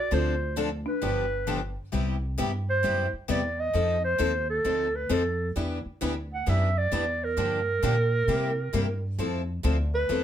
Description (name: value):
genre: acoustic string swing (jazz manouche)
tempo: 132 BPM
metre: 4/4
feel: swing 64% on 8ths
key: unclear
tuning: A4 = 440 Hz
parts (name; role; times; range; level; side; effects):
- breathy clarinet; melody; 0.0-10.2 s; A4 to F#5; -27 LUFS; right 2 dB; none
- folk marimba with medium mallets; second line; 0.0-1.7 s; D4 to F#4; -35 LUFS; left 1 dB; none
- picked steel-string acoustic guitar; accompaniment; 0.1-10.2 s; C3 to A4; -31 LUFS; left 6 dB; none
- picked steel-string acoustic guitar; accompaniment; 0.1-10.2 s; C3 to B4; -36 LUFS; right 3 dB; none
- upright bass; bass; 0.1-10.2 s; G1 to C3; -29 LUFS; equal; none
room: moderate small room reverb, RT60 0.6 s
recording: band playing live in one room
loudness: -24 LUFS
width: side -10 dB against mid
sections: 0.0-1.9 A section; 1.9-10.2 B section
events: none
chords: 0.1 Dm7; 1.0 G7; 1.9 Cmaj7; 3.7 F6; 5.6 Em9; 7.4 Gm7; 8.3 C7; 9.2 Fmaj7